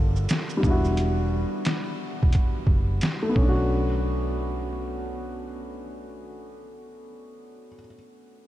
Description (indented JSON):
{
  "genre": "lo-fi hip hop",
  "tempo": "88 BPM",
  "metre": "4/4",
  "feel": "swing 62% on 16ths",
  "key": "B minor",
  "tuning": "A4 = 440 Hz",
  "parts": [
    { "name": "dark upright piano", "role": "accompaniment", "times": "0.0-8.5 s", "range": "G3 to A4", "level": "-29 LUFS", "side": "left 1 dB", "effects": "low-pass filter" },
    { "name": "vintage muted fingered electric bass", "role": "bass", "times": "0.0-7.8 s", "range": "E1 to B1", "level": "-26 LUFS", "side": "equal", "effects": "none" },
    { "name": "trip hop sampler-style drum kit", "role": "drums", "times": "0.2-3.6 s", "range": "hi-hat, kick drum, shaker, snare drum", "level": "-25 LUFS", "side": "equal", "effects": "overdrive" }
  ],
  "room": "light reverb",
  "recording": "none",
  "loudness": "-22 LUFS",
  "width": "side -14 dB against mid",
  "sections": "0.0-3.7 A section; 3.7-6.4 B section",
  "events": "none",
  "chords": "0.0 Gm9; 0.6 Em9; 3.4 Bm9",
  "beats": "0.29 | 0.97 1.66 2.34 3.02 | 3.70 4.38 5.07 5.75"
}